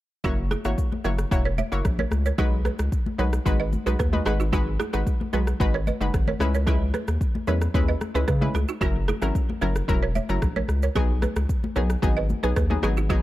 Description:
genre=afrobeats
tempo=112 BPM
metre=4/4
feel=straight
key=B major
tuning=A4 = 440 Hz
part: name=analog pluck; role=accompaniment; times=0.2-13.2 s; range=F#3 to C#5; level=-29 LUFS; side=left 1 dB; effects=chorus
part: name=balafon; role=riff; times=0.2-13.2 s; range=C#4 to E5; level=-31 LUFS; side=right 7 dB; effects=tape echo
part: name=saturated sub bass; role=bass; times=0.2-13.2 s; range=E1 to C#3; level=-25 LUFS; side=equal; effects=none
part: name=afro-pop drum kit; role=drums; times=0.2-13.2 s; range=kick drum, rim click, shaker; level=-26 LUFS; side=equal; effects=none
part: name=congas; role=percussion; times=0.2-13.2 s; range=none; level=-34 LUFS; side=left 3 dB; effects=none
room=digital ambience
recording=dark, warm production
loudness=-21 LUFS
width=side -15 dB against mid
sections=0.2-13.2 A section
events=none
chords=0.2 F#7; 2.4 B6; 4.3 G#m7; 6.4 C#m7; 8.8 F#7; 11.0 B6

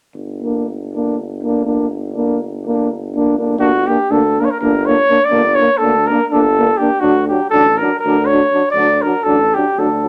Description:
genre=balkan folk, Balkan brass band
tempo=244 BPM (eighths)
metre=7/8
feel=straight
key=G hungarian minor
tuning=A4 = 440 Hz
part: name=warm tuba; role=bass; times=0.1-10.1 s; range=G1 to D2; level=-24 LUFS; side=equal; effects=none
part: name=clear euphonium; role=accompaniment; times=0.4-10.1 s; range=F#3 to Bb3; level=-23 LUFS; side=equal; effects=none
part: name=mellow trombone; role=accompaniment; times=0.4-10.1 s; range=D4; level=-22 LUFS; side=equal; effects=none
part: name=dark cornet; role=melody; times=3.6-10.1 s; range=F#4 to D5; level=-16 LUFS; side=equal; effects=none
room=light reverb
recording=none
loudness=-15 LUFS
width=mono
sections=0.1-3.6 A section; 3.6-10.1 B section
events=none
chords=0.1 Gm; 7.0 D

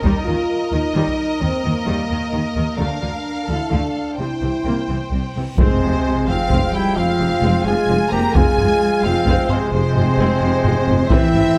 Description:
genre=cinematic, epic orchestral film score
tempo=87 BPM (dotted quarters)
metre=12/8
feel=straight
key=F harmonic minor from 5.6 s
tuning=A4 = 440 Hz
part: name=warm symphonic violin section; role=melody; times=0.0-11.6 s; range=C5 to Bb5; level=-31 LUFS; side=equal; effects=none
part: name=warm symphonic violin section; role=second line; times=0.0-11.6 s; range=A4 to Bb5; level=-31 LUFS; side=equal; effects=none
part: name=warm studio viola section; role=accompaniment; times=0.0-11.4 s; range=C3 to C4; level=-29 LUFS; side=equal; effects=none
part: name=mellow French horn section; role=sustained chords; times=0.0-11.6 s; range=Bb3 to Bb4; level=-25 LUFS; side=equal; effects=none
part: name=rich symphonic double bass section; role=bass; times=0.0-11.4 s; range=F1 to Eb2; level=-26 LUFS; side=equal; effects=none
part: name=warm studio cello section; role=bass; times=0.0-11.6 s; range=C3 to Bb3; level=-26 LUFS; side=equal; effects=none
part: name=solo taiko drums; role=drums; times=0.0-1.3, 5.6-11.6 s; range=none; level=-22 LUFS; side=equal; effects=none
part: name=reverse cymbal and sub drop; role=sound effects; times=5.4-8.4 s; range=none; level=-30 LUFS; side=equal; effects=none
part: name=flute section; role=second line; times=5.6-11.6 s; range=C5 to Bb5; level=-30 LUFS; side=equal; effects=none
part: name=clear trombone section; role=sustained chords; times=5.6-11.6 s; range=E3 to A3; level=-31 LUFS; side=equal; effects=none
part: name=mellow trumpet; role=stabs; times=5.6-11.6 s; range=Ab3 to G4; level=-27 LUFS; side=equal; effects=none
part: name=dark tuba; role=bass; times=5.6-11.4 s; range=F1 to A1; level=-30 LUFS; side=equal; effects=none
room=moderate scoring stage reverb, RT60 2.0 s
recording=none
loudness=-18 LUFS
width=mono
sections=0.0-5.6 A section; 5.6-11.6 A section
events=reverse cymbal 5.4; impact 5.6-8.4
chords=0.0 Eb; 2.8 Dm; 4.2 C7; 5.6 Fm

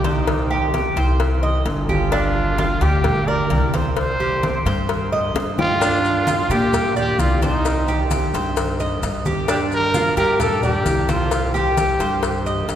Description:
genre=latin, Cuban son and guajira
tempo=130 BPM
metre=4/4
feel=straight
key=unclear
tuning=A4 = 438 Hz
part: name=breathy trumpet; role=melody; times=0.0-12.4 s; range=Eb4 to C5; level=-22 LUFS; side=equal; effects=none
part: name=Cuban tres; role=arpeggios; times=0.0-12.8 s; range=D4 to Eb5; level=-23 LUFS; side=right 2 dB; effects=none
part: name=upright bass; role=bass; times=0.0-12.8 s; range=G1 to Bb2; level=-22 LUFS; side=equal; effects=none
part: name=congas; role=percussion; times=0.0-12.8 s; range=none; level=-27 LUFS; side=equal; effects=none
part: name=cowbell and bongos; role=percussion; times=0.0-12.8 s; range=none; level=-27 LUFS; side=left 5 dB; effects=none
part: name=maracas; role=percussion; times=5.8-12.8 s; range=none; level=-36 LUFS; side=left 6 dB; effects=none
room=wet cathedral reverb, RT60 4.9 s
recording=recorded in a church or concert hall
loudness=-17 LUFS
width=side -10 dB against mid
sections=0.0-12.8 A section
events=drum fill 5.4-5.8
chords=0.3 Cm; 2.1 Gm7; 4.0 Cm; 5.8 Gm7; 7.7 Cm; 9.5 Gm7; 11.3 Cm

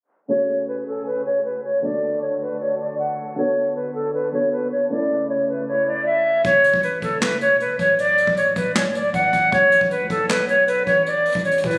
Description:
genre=hip hop, trap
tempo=156 BPM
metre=4/4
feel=half-time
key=F# minor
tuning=A4 = 442 Hz
part: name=breathy silver concert flute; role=melody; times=0.3-11.8 s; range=A4 to F#5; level=-21 LUFS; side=equal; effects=low-pass filter, tape echo
part: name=dark concert grand piano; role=accompaniment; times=0.3-6.5 s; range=C#3 to A4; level=-32 LUFS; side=equal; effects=low-pass filter
part: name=dark symphonic string section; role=sustained chords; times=0.3-6.4 s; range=C#3 to A4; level=-36 LUFS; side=equal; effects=none
part: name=long sustained 808-style bass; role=bass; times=6.4-11.8 s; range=D1 to A2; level=-34 LUFS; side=equal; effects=none
part: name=jazz brush drum kit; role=drums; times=6.4-11.8 s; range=handclaps, hi-hat, kick drum, snare drum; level=-29 LUFS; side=equal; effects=none
room=light reverb, small room ambience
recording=recorded on a phone in the room, studio reverb, low-pass filter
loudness=-20 LUFS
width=mono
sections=0.3-6.4 A section; 6.4-11.8 B section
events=filter sweep 0.3-6.4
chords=0.3 F#madd9; 1.8 D; 3.4 Bm7; 4.9 A; 6.4 F#m; 8.0 D; 9.5 B7(no3); 11.1 A5

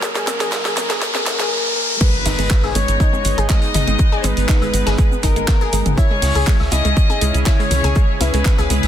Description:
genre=progressive house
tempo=121 BPM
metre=4/4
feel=straight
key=G# minor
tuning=A4 = 440 Hz
part: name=soft octave-layered synth lead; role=melody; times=0.0-8.9 s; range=A#4 to D#5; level=-26 LUFS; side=left 2 dB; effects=chorus, sidechain pumping, digital delay
part: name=lush unison pad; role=sustained chords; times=0.0-8.9 s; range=F#2 to A#4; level=-27 LUFS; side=right 2 dB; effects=chorus, sidechain pumping
part: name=electronic kick drum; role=drums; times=0.0-8.6 s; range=none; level=-15 LUFS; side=equal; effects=high-pass filter on kick, high-pass filter on room
part: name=house drum kit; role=drums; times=0.0-8.9 s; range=crash cymbal, handclaps, hi-hat, shaker, snare drum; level=-24 LUFS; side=right 1 dB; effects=none
part: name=street-band drum kit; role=drums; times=0.0-8.9 s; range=hi-hat, shaker, snare drum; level=-33 LUFS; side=equal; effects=none
part: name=riser and impact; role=sound effects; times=0.0-4.0 s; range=none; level=-23 LUFS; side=equal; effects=none
part: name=analog pluck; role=arpeggios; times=0.2-8.8 s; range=G#3 to G#4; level=-25 LUFS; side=left 1 dB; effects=chorus, sidechain pumping, digital delay
part: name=electronic congas, woodblock and toms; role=percussion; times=0.3-8.8 s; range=none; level=-29 LUFS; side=left 3 dB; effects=sidechain pumping on perc, sidechain pumping on toms
part: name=rich chamber violin section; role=second line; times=2.0-8.9 s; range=A#4 to D#5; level=-24 LUFS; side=left 5 dB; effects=sidechain pumping, digital delay
part: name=tight sequencer bass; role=bass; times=2.3-8.9 s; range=G#1 to C#2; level=-18 LUFS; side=equal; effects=sidechain pumping
room=little or no reverb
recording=dense, heavily limited modern master, high-pass filter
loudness=-14 LUFS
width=side -10 dB against mid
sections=0.0-2.0 A section; 2.0-8.9 B section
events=build-up 0.0-2.0; drum fill 0.0-1.5; riser 0.0-2.0; filter sweep on synth pluck 0.0-2.0; filter sweep on analog synth pad 0.0-2.0; filter sweep 0.0-2.0; drop 2.0-8.9; impact 2.0-4.0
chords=0.0 F#; 2.0 G#m; 6.0 C#m

